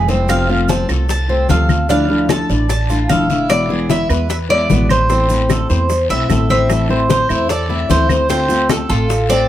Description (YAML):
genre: latin, Cuban son and guajira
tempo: 150 BPM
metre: 4/4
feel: straight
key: A harmonic minor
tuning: A4 = 440 Hz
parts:
  - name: Cuban tres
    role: melody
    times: 0.0-9.5 s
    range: A4 to A5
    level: -19 LUFS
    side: right 1 dB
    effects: none
  - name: nylon-string guitar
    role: accompaniment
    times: 0.0-9.5 s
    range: B2 to F4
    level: -20 LUFS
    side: left 3 dB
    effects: none
  - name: Cuban tres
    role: arpeggios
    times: 0.0-9.5 s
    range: C4 to D5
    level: -20 LUFS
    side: equal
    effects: none
  - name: upright bass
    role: bass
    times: 0.0-9.5 s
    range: E1 to E2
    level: -18 LUFS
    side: right 1 dB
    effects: none
  - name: bongos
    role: percussion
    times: 0.1-9.5 s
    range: none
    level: -26 LUFS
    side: left 7 dB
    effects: none
  - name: guiro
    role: percussion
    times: 0.1-9.5 s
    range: none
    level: -30 LUFS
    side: left 7 dB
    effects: none
  - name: maracas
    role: percussion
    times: 0.1-9.5 s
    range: none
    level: -32 LUFS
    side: right 6 dB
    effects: none
  - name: claves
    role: percussion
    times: 0.3-8.9 s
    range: none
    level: -27 LUFS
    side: right 6 dB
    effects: none
  - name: congas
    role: percussion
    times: 0.3-9.5 s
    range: none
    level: -22 LUFS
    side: left 3 dB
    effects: none
room: light reverb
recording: close, detailed microphones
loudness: -13 LUFS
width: side -12 dB against mid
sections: 0.0-6.7 A section; 6.7-9.5 B section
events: drum fill 0.0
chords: 0.3 F; 1.9 Dmadd9; 3.5 E; 5.1 Am; 8.3 Dm7